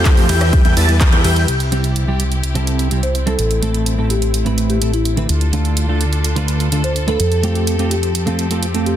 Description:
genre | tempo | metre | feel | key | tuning
EDM, festival progressive house | 126 BPM | 4/4 | straight | unclear | A4 = 440 Hz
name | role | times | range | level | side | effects
marimba with soft mallets | melody | 0.0-9.0 s | E4 to C5 | -24 LUFS | left 2 dB | tape echo
clean electric guitar | accompaniment | 0.0-9.0 s | A2 to B4 | -21 LUFS | right 3 dB | analog chorus, sidechain pumping
clear studio string section | sustained chords | 0.0-9.0 s | C3 to B4 | -27 LUFS | equal | sidechain pumping
plucky unison lead | arpeggios | 0.0-1.5 s | G6 to A6 | -23 LUFS | left 1 dB | wide subtle chorus, sidechain pumping, tape echo
dense compressed supersaw | riff | 0.0-1.5 s | E4 to A5 | -24 LUFS | right 1 dB | sidechain pumping, low-pass filter, tape echo
fat analog bass | bass | 0.0-9.0 s | A1 to F2 | -18 LUFS | equal | sidechain pumping
electronic kick drum | drums | 0.1-1.1 s | none | -13 LUFS | equal | overdrive
house drum kit | drums | 0.1-9.0 s | handclaps, hi-hat, ride cymbal, rim click | -24 LUFS | right 2 dB | overdrive
room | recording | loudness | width
light reverb, digital ambience | dense, heavily limited modern master | -14 LUFS | side -11 dB against mid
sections
0.0-1.5 A section; 1.5-9.0 B section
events
drop 0.0-1.5; band accent 1.0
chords
0.0 Fadd9; 0.5 Em; 1.5 C; 3.4 Am; 5.3 Dm; 7.2 Fadd9

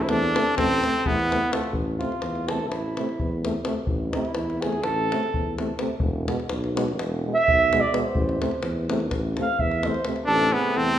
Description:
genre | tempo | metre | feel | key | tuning
balkan folk, Balkan brass band | 253 BPM (eighths) | 9/8 | straight | A harmonic minor | A4 = 439 Hz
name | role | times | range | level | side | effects
clear trumpet | melody | 0.0-1.7, 10.2-11.0 s | A3 to E4 | -23 LUFS | equal | none
mellow flugelhorn | second line | 0.0-11.0 s | E4 to F5 | -25 LUFS | right 2 dB | none
warm tuba | bass | 0.0-11.0 s | E1 to E2 | -29 LUFS | equal | none
clear trombone | accompaniment | 0.1-11.0 s | G#3 to A3 | -33 LUFS | left 5 dB | none
warm euphonium | accompaniment | 0.1-11.0 s | B2 to C3 | -32 LUFS | right 4 dB | none
davul | percussion | 0.1-10.2 s | none | -30 LUFS | left 2 dB | none
room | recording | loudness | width
wet recital hall reverb, RT60 1.6 s | minimal, uncompressed stereo recording | -22 LUFS | side -11 dB against mid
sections
0.0-1.7 A section; 1.7-10.3 B section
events
flugelhorn solo 1.7-10.3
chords
0.0 Am; 6.0 E; 8.1 Am

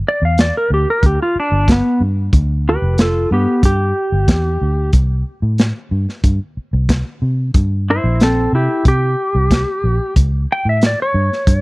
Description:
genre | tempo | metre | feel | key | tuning
straight-eighth soul blues | 92 BPM | 4/4 | straight | G mixolydian | A4 = 437 Hz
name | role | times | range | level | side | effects
clean lap steel guitar | melody | 0.1-11.6 s | B3 to G5 | -17 LUFS | equal | none
vintage muted fingered electric bass | bass | 0.2-11.6 s | F1 to C3 | -16 LUFS | equal | none
crunchy breakbeat drum kit | drums | 0.4-11.6 s | hi-hat, kick drum, snare drum | -13 LUFS | equal | none
room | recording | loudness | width
small room ambience | dry, close 1970s-style studio recording | -13 LUFS | side -23 dB against mid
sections
0.0-11.6 A section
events
none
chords
0.0 G7(no3); 4.9 C7(no3); 10.2 A7

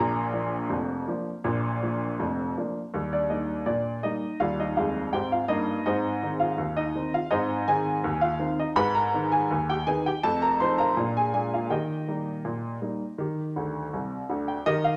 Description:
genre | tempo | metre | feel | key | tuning
ragtime piano | 82 BPM | 2/4 | straight | Eb major | A4 = 438 Hz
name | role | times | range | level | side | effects
clear upright piano | solo | 0.0-15.0 s | F1 to C6 | -27 LUFS | equal | none
room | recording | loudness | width
wet large studio reverb, RT60 1.0 s | none | -27 LUFS | mono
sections
0.0-2.9 A section; 2.9-14.7 B section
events
upright piano fill 13.6-14.7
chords
0.0 Bb; 2.9 Eb; 5.8 Ab; 8.8 Abm; 10.2 F7; 11.0 Bb7; 11.7 Eb

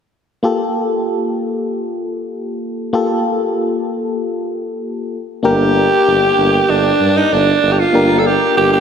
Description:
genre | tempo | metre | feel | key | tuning
1980s-style pop | 96 BPM | 4/4 | straight | G minor | A4 = 440 Hz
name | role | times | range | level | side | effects
FM electric piano with tremolo | accompaniment | 0.4-8.8 s | Bb3 to Bb4 | -17 LUFS | left 2 dB | none
warm tuba | bass | 5.4-8.8 s | G1 to G2 | -18 LUFS | right 1 dB | none
breathy alto saxophone | melody | 5.5-8.8 s | D4 to A4 | -13 LUFS | right 2 dB | analog delay
room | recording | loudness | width
wet lush hall reverb, RT60 2.9 s | dreamy mix soaked in reverb | -13 LUFS | side -7 dB against mid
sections
0.4-5.4 A section; 5.4-8.8 B section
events
none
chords
0.4 Gm9; 5.1 N.C.; 5.4 Gm

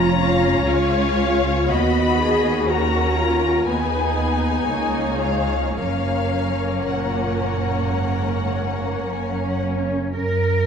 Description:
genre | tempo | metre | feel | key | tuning
classical, slow romantic movement for string orchestra | 50-63 BPM | 4/4 | rubato | F# major | A4 = 440 Hz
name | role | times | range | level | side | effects
warm symphonic violin section | melody | 0.0-9.6 s | C#5 to B5 | -26 LUFS | left 6 dB | none
dark symphonic violin section | second line | 0.0-9.9 s | F#4 to E#5 | -26 LUFS | left 4 dB | none
rich symphonic viola section | accompaniment | 0.0-9.9 s | G#3 to G#4 | -23 LUFS | right 1 dB | none
warm symphonic cello section | bass | 0.0-10.7 s | C#2 to A#4 | -26 LUFS | right 1 dB | none
warm symphonic double bass section | bass | 0.0-10.7 s | E#1 to F#2 | -25 LUFS | right 2 dB | none
room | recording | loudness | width
moderate scoring stage reverb, RT60 1.9 s | dark, warm production | -18 LUFS | side -7 dB against mid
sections
0.0-10.2 A section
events
none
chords
0.0 C#/E#; 1.7 B/D#; 3.7 G#m/D#; 4.7 C#; 5.8 F#

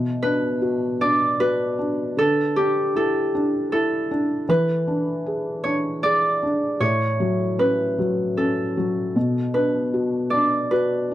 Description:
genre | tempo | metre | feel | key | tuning
children's music, lullaby | 77 BPM | 3/4 | straight | unclear | A4 = 440 Hz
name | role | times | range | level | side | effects
felt-muted upright piano | accompaniment | 0.0-11.1 s | A2 to G#4 | -23 LUFS | left 1 dB | none
Celtic harp | melody | 0.2-11.1 s | G4 to D5 | -22 LUFS | right 1 dB | none
room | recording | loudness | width
small room ambience | dry, close 1970s-style studio recording | -19 LUFS | side -13 dB against mid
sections
0.0-11.1 A section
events
none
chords
0.0 Bm; 2.2 Dsus2; 4.5 E7; 6.8 A6; 9.2 Bm

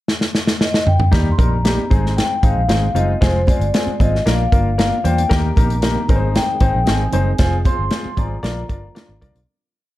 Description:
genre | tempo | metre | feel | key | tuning
uptempo 1960s-style soul | 115 BPM | 4/4 | straight | Eb major | A4 = 442 Hz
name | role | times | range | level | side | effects
natural country drum kit | drums | 0.1-9.5 s | hi-hat, kick drum, snare drum, toms | -17 LUFS | equal | none
vibraphone with soft mallets | melody | 0.6-9.2 s | C5 to C6 | -22 LUFS | left 2 dB | none
clear baby grand piano | accompaniment | 1.1-9.4 s | G3 to D5 | -23 LUFS | left 3 dB | none
vintage muted fingered electric bass | bass | 1.1-9.4 s | F1 to Fb2 | -19 LUFS | equal | none
congas | percussion | 1.4-9.5 s | none | -31 LUFS | right 7 dB | none
percussive tonewheel organ | sustained chords | 5.3-9.5 s | D3 to Ab4 | -31 LUFS | right 3 dB | slow rotary speaker, overdrive, chorus vibrato
room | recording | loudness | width
light reverb, small room ambience | dark, warm production | -14 LUFS | side -16 dB against mid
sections
0.0-1.1 pickup bar; 1.1-9.5 verse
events
drum fill 0.1-1.1; fade-out 7.4-9.5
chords
0.0 N.C.; 1.1 Eb; 1.9 Ab; 3.2 Fm; 4.3 Bb; 5.3 Eb; 6.1 Ab; 7.4 Fm; 8.4 Bb

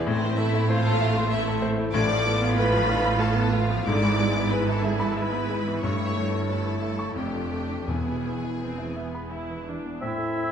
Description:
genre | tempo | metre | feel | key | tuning
classical | 82-98 BPM | 3/4 | rubato | A minor | A4 = 440 Hz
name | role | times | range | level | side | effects
clear concert grand piano | melody | 0.0-10.5 s | E2 to D6 | -28 LUFS | left 2 dB | none
warm symphonic violin section | melody | 0.0-9.7 s | C5 to D6 | -33 LUFS | left 3 dB | none
warm chamber violin section | second line | 0.0-9.7 s | C4 to D5 | -32 LUFS | left 1 dB | none
warm studio viola section | accompaniment | 0.0-10.0 s | D3 to F4 | -30 LUFS | right 3 dB | none
rich studio double bass section | bass | 0.0-9.8 s | E1 to A1 | -30 LUFS | right 3 dB | none
warm chamber cello section | bass | 0.0-9.8 s | E2 to A2 | -31 LUFS | right 3 dB | none
timpani | percussion | 1.9-2.8, 7.9-8.9 s | E2 to A2 | -35 LUFS | left 1 dB | none
bright clarinet | second line | 10.0-10.5 s | E4 | -29 LUFS | left 2 dB | none
clear oboe | second line | 10.0-10.5 s | E5 | -31 LUFS | right 4 dB | none
mellow hollow small flute group | second line | 10.0-10.5 s | E6 | -37 LUFS | left 5 dB | none
warm bassoon | accompaniment | 10.0-10.5 s | C4 | -34 LUFS | right 3 dB | none
room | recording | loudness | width
moderate scoring stage reverb, RT60 1.8 s | nothing above 11.0 kHz | -22 LUFS | side -8 dB against mid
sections
0.0-10.0 A section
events
none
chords
0.1 Am; 1.9 Bm7b5/A; 3.9 E7/G#; 5.8 A7/G; 7.2 Dm/F; 7.9 E; 10.0 Am

